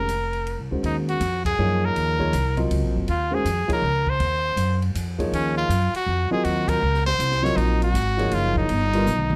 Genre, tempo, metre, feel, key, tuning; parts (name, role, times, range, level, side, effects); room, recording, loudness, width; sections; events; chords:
modal jazz; 160 BPM; 3/4; swing 65% on 8ths; Eb dorian; A4 = 440 Hz
brilliant trumpet; melody; 0.0-9.4 s; Db4 to Db5; -26 LUFS; equal
dark grand piano; accompaniment; 0.0-9.1 s; Eb3 to Eb5; -29 LUFS; equal
upright bass; bass; 0.0-9.4 s; F1 to Gb2; -26 LUFS; equal
open jazz drum kit; drums; 0.1-9.4 s; hi-hat, kick drum, ride cymbal, snare drum, toms; -36 LUFS; equal
little or no reverb; close, detailed microphones; -23 LUFS; mono
0.8-9.4 A section
band accent 1.4, 3.6, 6.6; drum fill 9.1
0.0 Bbm11; 0.8 Ebm9; 8.7 G7alt